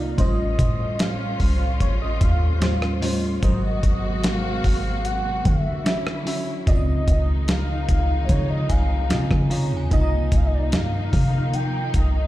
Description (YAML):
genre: contemporary R&B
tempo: 74 BPM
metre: 4/4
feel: straight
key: unclear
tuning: A4 = 441 Hz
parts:
  - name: FM electric piano with soft pad layer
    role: accompaniment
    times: 0.0-12.3 s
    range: Ab2 to F5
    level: -28 LUFS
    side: equal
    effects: chorus
  - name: warm studio string section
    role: sustained chords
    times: 0.0-12.3 s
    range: C3 to Gb4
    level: -31 LUFS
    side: left 2 dB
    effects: none
  - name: soft 808-style bass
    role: bass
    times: 0.0-12.3 s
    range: Ab1 to D3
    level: -23 LUFS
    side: equal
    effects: none
  - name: synth chime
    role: texture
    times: 0.0-3.8, 8.7-10.7 s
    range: Eb5 to F6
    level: -40 LUFS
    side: equal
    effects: ensemble chorus, tape echo
  - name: warm velvety synth lead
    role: melody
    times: 0.2-12.3 s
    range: C5 to G5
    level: -30 LUFS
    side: equal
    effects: chorus, tape echo
  - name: dusty soul sampler-style drum kit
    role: drums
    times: 0.2-12.1 s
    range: hi-hat, kick drum, rim click, snare drum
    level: -21 LUFS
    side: equal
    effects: none
room: little or no reverb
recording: played on a big sound system in a bare room, large studio reverb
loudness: -19 LUFS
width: side -15 dB against mid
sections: 0.0-12.3 A section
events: none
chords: 0.2 A7alt; 3.4 Ab9; 5.9 Dmaj9; 6.7 Dbmaj9; 9.9 Cm11